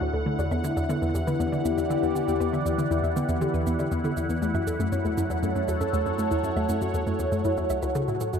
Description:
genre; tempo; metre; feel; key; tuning
ambient, sequencer-driven space music; 119 BPM; 4/4; straight; unclear; A4 = 437 Hz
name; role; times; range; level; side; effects
phased analog pad; sustained chords; 0.0-8.4 s; D3 to F#5; -27 LUFS; left 1 dB; phaser, chorus
soft round pluck; arpeggios; 0.0-8.4 s; A3 to E5; -30 LUFS; left 2 dB; chorus, auto-pan, ping-pong delay
hollow square pluck; riff; 0.0-8.4 s; C#2 to D3; -28 LUFS; right 1 dB; chorus, ping-pong delay
shaker and woodblock; percussion; 0.4-8.4 s; none; -44 LUFS; right 6 dB; ping-pong delay
room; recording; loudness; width
moderate huge ambient reverb, RT60 8.9 s; dark, warm production; -24 LUFS; side -7 dB against mid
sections
0.0-8.4 A section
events
none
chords
0.4 Em7; 4.4 F#m7

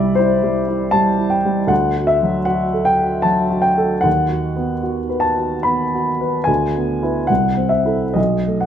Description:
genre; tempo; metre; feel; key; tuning
classical, romantic character piece for solo piano; 61-80 BPM; 3/4; rubato; unclear; A4 = 439 Hz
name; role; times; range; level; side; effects
warm upright piano; solo; 0.0-8.7 s; B1 to B5; -15 LUFS; equal; none
room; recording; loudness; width
moderate recital hall reverb, RT60 1.5 s; close, detailed microphones; -15 LUFS; side -9 dB against mid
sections
0.0-8.7 A section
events
none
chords
0.0 C; 1.7 D; 4.1 B/D#; 6.5 E7/D; 7.3 Am/C

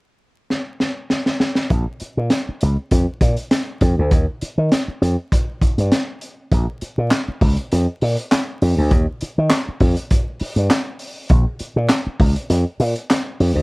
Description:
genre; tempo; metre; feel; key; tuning
funk; 100 BPM; 4/4; straight; Bb dorian; A4 = 443 Hz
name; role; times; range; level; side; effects
crunchy breakbeat drum kit; drums; 0.5-13.5 s; handclaps, hi-hat, kick drum, snare drum; -18 LUFS; equal; none
slap bass with an envelope filter; bass; 1.7-13.6 s; Bb1 to Eb3; -17 LUFS; equal; none
room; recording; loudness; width
little or no reverb; vinyl crackle; -17 LUFS; side -28 dB against mid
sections
0.0-1.7 A section; 1.7-6.5 B section; 6.5-13.6 C section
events
drum fill 0.5-1.7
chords
none

